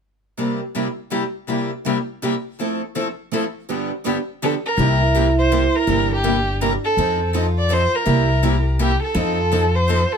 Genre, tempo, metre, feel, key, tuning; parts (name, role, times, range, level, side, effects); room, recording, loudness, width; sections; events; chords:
acoustic string swing (jazz manouche); 164 BPM; 3/4; swing 63% on 8ths; C mixolydian; A4 = 440 Hz
picked steel-string acoustic guitar; accompaniment; 0.4-10.0 s; G2 to A4; -24 LUFS; left 4 dB
picked steel-string acoustic guitar; accompaniment; 0.4-10.0 s; G2 to A4; -27 LUFS; right 6 dB
warm violin; melody; 4.4-10.2 s; G4 to D5; -20 LUFS; right 1 dB
picked steel-string acoustic guitar; second line; 4.8-10.2 s; C4 to G4; -24 LUFS; right 4 dB
upright bass; bass; 4.8-10.0 s; G1 to F2; -20 LUFS; left 1 dB
light reverb; close, detailed microphones; -17 LUFS; side -6 dB against mid
0.4-4.8 A section; 4.8-10.2 B section
0.4 C7; 2.6 Fmaj7; 3.7 G7; 4.8 C7; 7.0 F7; 8.1 C7; 9.2 F7